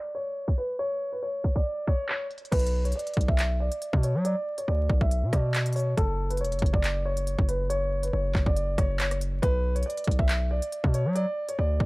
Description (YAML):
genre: hip hop, drill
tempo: 139 BPM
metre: 4/4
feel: half-time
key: B minor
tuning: A4 = 443 Hz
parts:
  - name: dark grand piano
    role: melody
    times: 0.0-11.9 s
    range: A4 to E5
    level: -30 LUFS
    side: equal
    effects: low-pass filter, analog delay
  - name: drill drum kit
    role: drums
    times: 0.1-11.9 s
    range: crash cymbal, handclaps, hi-hat, kick drum, rim click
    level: -26 LUFS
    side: equal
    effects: none
  - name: distorted 808-style bass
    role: bass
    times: 2.5-11.9 s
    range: E1 to F#3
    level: -26 LUFS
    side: equal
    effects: distortion
room: little or no reverb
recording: dry, gritty hardware recording, vinyl crackle, low-pass filter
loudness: -24 LUFS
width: side -23 dB against mid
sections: 0.0-2.5 A section; 2.5-11.9 B section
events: filter sweep 0.0-2.5; filter sweep on grand piano 2.5-9.4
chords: 0.0 N.C.; 2.5 Bm; 6.0 F#5; 9.4 Bm